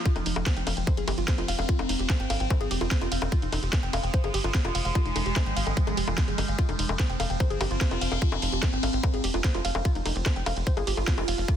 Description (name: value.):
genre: psychedelic trance.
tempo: 147 BPM.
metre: 4/4.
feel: straight.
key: F minor.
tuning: A4 = 437 Hz.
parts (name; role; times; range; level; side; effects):
evolving wavetable pad; sustained chords; 0.0-11.6 s; F3 to F4; -32 LUFS; right 1 dB; phaser, built-in reverb, sidechain pumping.
woody wave-folded pluck; riff; 0.1-11.5 s; Eb4 to G5; -33 LUFS; moving between left 3 dB and right 3 dB; chorus, auto-pan, sidechain pumping, tape echo.
drum and bass drum kit; drums; 0.1-11.6 s; bongos, hi-hat, ride cymbal, snare drum; -31 LUFS; left 2 dB; none.
electronic kick drum; drums; 0.1-11.6 s; none; -24 LUFS; equal; none.
tight sequencer bass; bass; 0.2-11.4 s; F1 to Ab1; -30 LUFS; equal; none.
room: light reverb, digital ambience.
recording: dense, heavily limited modern master.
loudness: -24 LUFS.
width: side -10 dB against mid.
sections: 0.0-11.6 A section.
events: none.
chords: 0.0 F5.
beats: | 0.06 0.46 0.87 1.28 | 1.69 2.10 2.50 2.91 | 3.32 3.73 4.14 4.54 | 4.95 5.36 5.77 6.18 | 6.59 6.99 7.40 7.81 | 8.22 8.63 9.04 9.44 | 9.85 10.26 10.67 11.08 | 11.48.